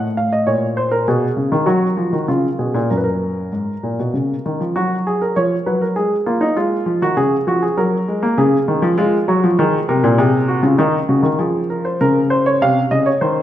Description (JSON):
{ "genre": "classical, baroque-style two-part invention for grand piano", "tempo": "99 BPM", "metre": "3/4", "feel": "straight", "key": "F# major", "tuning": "A4 = 440 Hz", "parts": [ { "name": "warm baby grand piano", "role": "solo", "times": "0.0-13.4 s", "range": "F#2 to F5", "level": "-15 LUFS", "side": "equal", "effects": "none" } ], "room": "wet recital hall reverb, RT60 1.5 s", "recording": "none", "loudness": "-15 LUFS", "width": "side -12 dB against mid", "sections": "0.0-4.8 A section; 4.8-12.0 B section; 12.0-13.4 C section", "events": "none", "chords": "0.5 Bbm; 1.1 G#m/B; 1.7 D#madd9; 2.3 C#7; 2.9 F#; 6.0 G#sus2; 6.6 C#; 7.8 F#; 8.4 C#; 9.6 A#9sus4; 10.2 G#/B#; 11.4 Fmadd11; 12.0 Bbm/Db", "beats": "0.48 | 1.08 1.68 2.29 | 2.90 3.53 4.14 | 4.76 5.37 5.97 | 6.57 7.17 7.78 | 8.38 8.98 9.58 | 10.18 10.78 11.39 | 12.00 12.61 13.22" }